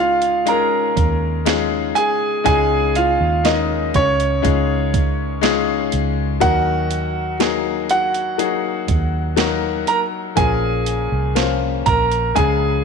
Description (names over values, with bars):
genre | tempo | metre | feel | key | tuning
pop ballad | 60 BPM | 4/4 | straight | Db major | A4 = 442 Hz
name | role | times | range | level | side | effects
warm grand piano | melody | 0.0-12.8 s | Db4 to Bb5 | -19 LUFS | right 3 dB | none
bright upright piano | accompaniment | 0.0-12.8 s | Bb2 to C5 | -21 LUFS | left 12 dB | none
vintage muted fingered electric bass | bass | 0.0-12.8 s | Bb1 to Eb2 | -22 LUFS | right 1 dB | none
boom bap sampler-style drum kit | drums | 0.2-12.6 s | hi-hat, kick drum, snare drum | -22 LUFS | right 5 dB | none
room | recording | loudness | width
light reverb, digital ambience | 1960s-style stereo | -16 LUFS | side -5 dB against mid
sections
0.0-12.8 A section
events
none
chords
0.0 Dbadd9; 6.4 Ebm; 10.4 Bbm